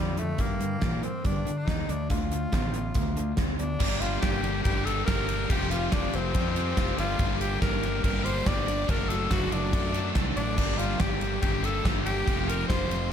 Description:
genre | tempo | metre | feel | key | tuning
classic rock | 142 BPM | 4/4 | straight | G minor | A4 = 440 Hz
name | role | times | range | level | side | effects
growling tenor saxophone | melody | 0.0-13.1 s | G3 to D5 | -32 LUFS | left 2 dB | slapback echo
distorted electric guitar | riff | 0.0-13.1 s | F2 to A4 | -35 LUFS | left 11 dB | overdrive
distorted electric guitar | riff | 0.0-13.1 s | F2 to Bb4 | -36 LUFS | right 10 dB | distortion
fuzz fingered electric bass | bass | 0.0-13.1 s | F1 to Bb2 | -31 LUFS | equal | overdrive
gated 80s drum kit | drums | 0.2-13.0 s | crash cymbal, hi-hat, kick drum, ride cymbal, snare drum | -29 LUFS | equal | none
string machine, full ensemble | sustained chords | 3.8-13.1 s | none | barely audible | none | none
sludgy distorted guitar | riff | 3.8-13.1 s | F3 to A4 | -35 LUFS | right 1 dB | overdrive
room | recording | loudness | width
light reverb, small room reverb | none | -25 LUFS | side -8 dB against mid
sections
0.0-3.8 A section; 3.8-13.1 B section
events
none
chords
0.4 Gm; 1.9 Dm; 3.8 Gm; 5.5 Fsus2; 7.0 Gm; 8.9 D/F#; 10.6 Gm; 12.3 Fsus2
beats
| 0.39 0.81 1.24 1.67 | 2.10 2.52 2.95 3.38 | 3.80 4.23 4.65 5.08 | 5.50 5.92 6.35 6.77 | 7.19 7.62 8.04 8.46 | 8.88 9.31 9.73 10.15 | 10.58 11.00 11.42 11.85 | 12.27 12.69 13.11

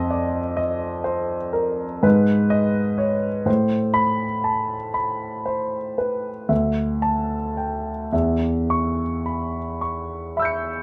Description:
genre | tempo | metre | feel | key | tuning
classical, impressionist solo piano | 36-42 BPM (dotted quarters) | 9/8 | rubato | unclear | A4 = 439 Hz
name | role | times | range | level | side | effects
warm grand piano | solo | 0.0-10.8 s | D2 to C#7 | -23 LUFS | equal | none
room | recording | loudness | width
moderate small room reverb, RT60 0.5 s | none | -23 LUFS | mono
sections
0.0-10.8 A section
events
none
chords
0.0 F5; 2.0 G#m; 3.5 Amadd9; 6.5 Dsus2; 8.1 Em6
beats
0.58 2.04 | 3.48 4.96 6.51 | 8.12 9.80

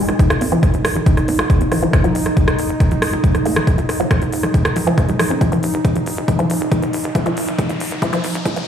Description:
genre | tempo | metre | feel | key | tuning
psychedelic trance | 138 BPM | 4/4 | straight | F phrygian | A4 = 440 Hz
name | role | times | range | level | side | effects
evolving wavetable pad | sustained chords | 0.0-8.7 s | Eb4 | -23 LUFS | right 2 dB | chorus, built-in reverb, sidechain pumping
tight sequencer bass | bass | 0.0-8.6 s | Eb1 to Db2 | -28 LUFS | left 1 dB | high-pass filter
wide unison pluck | riff | 0.1-8.6 s | F3 to Gb4 | -21 LUFS | equal | auto-pan, vintage 12-bit sampler grit, sidechain pumping, digital delay
big-room dance drum kit | drums | 0.1-8.7 s | hi-hat, rim click | -23 LUFS | right 1 dB | overdrive, studio reverb
electronic kick drum | drums | 0.2-8.5 s | none | -16 LUFS | equal | studio reverb
riser | sound effects | 6.0-8.7 s | none | -31 LUFS | left 1 dB | none
room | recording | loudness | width
light reverb | played on a big sound system in a bare room, large studio reverb, high-pass filter | -14 LUFS | side -9 dB against mid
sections
0.0-8.7 A section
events
build-up 0.0-8.7; filter sweep on synth arpeggio sound 0.0-8.7; filter sweep on ambient pad 0.0-8.7; filter sweep 0.0-8.7; drum fill 5.4-8.7; riser 6.0-8.7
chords
0.0 F5; 1.9 Gb5; 5.4 F5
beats
| 0.19 0.63 1.06 1.50 | 1.93 2.37 2.80 3.24 | 3.67 4.11 4.54 4.98 | 5.41 5.85 6.28 6.72 | 7.15 7.59 8.02 8.46

